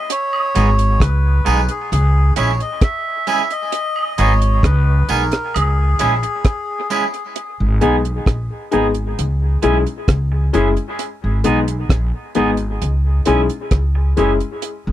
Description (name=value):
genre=dub reggae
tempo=66 BPM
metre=4/4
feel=straight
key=G# minor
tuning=A4 = 439 Hz
part: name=melodica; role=melody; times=0.0-6.9 s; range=G#4 to E5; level=-22 LUFS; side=left 1 dB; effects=dub echo
part: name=deep reggae drum kit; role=drums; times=0.1-14.8 s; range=hi-hat, kick drum, rim click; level=-18 LUFS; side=equal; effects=none
part: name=woodblock and tambourine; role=percussion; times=0.3-7.1 s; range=none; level=-27 LUFS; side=right 5 dB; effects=dub echo
part: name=clean electric guitar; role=accompaniment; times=0.5-14.3 s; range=G#3 to G#4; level=-23 LUFS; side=right 4 dB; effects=dub echo
part: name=upright bass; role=bass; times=0.6-14.9 s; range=F#1 to C#2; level=-16 LUFS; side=equal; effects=none
part: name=warm concert grand piano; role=stabs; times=7.8-14.4 s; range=G#3 to G#4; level=-20 LUFS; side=left 5 dB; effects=dub echo
room=light reverb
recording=dry, close 1970s-style studio recording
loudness=-15 LUFS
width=side -13 dB against mid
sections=0.0-7.4 A section; 7.4-14.9 B section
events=break 0.0-7.4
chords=0.1 G#m; 1.9 C#m; 3.7 G#m; 5.5 C#m; 7.4 G#m; 9.2 C#m; 11.0 G#m; 12.8 C#m